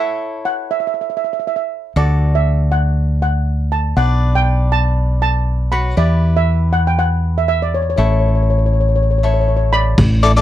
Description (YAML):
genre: calypso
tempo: 120 BPM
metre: 4/4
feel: swing 54% on 16ths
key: unclear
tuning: A4 = 439 Hz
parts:
  - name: steel pan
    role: melody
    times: 0.0-10.2 s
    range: C#5 to B5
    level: -19 LUFS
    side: right 2 dB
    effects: none
  - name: cavaquinho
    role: accompaniment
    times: 0.0-10.4 s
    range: D4 to D5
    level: -24 LUFS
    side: left 3 dB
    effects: none
  - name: fingered electric bass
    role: bass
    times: 2.0-10.4 s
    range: A1 to E2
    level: -14 LUFS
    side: equal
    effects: none
  - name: street-band drum kit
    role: drums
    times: 10.0-10.4 s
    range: crash cymbal, hi-hat, kick drum, rim click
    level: -16 LUFS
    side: equal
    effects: none
room: little or no reverb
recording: dry, close 1970s-style studio recording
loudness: -14 LUFS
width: side -12 dB against mid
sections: 0.0-10.0 A section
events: none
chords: 0.0 A; 2.0 D; 4.0 Bm; 6.0 Em; 8.0 A